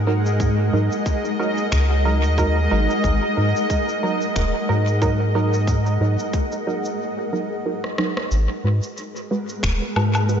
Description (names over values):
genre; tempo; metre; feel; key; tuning
ambient dub; 91 BPM; 4/4; swing 57% on 16ths; unclear; A4 = 440 Hz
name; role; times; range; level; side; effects
granular cloud pad; sustained chords; 0.0-10.4 s; G#3 to F#5; -24 LUFS; equal; built-in reverb
soft dub sub bass; bass; 0.0-10.4 s; D#1 to G#2; -19 LUFS; equal; none
filtered dub chord stab; stabs; 0.1-10.4 s; F#3 to B4; -26 LUFS; right 3 dB; chorus, cassette tape, dub echo
electronic cabasa, finger snaps, rim click and woodblock; drums; 0.3-10.4 s; none; -30 LUFS; left 1 dB; dub echo
electronic kick drum; drums; 0.4-9.8 s; none; -23 LUFS; equal; none
room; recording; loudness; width
moderate lush hall reverb, RT60 2.0 s; dreamy mix soaked in reverb, nothing above 7.6 kHz; -18 LUFS; side -8 dB against mid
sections
0.0-8.3 A section; 8.3-10.4 B section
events
break 7.0-8.3; drum fill 7.8-8.3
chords
0.0 D#m; 8.3 G#m7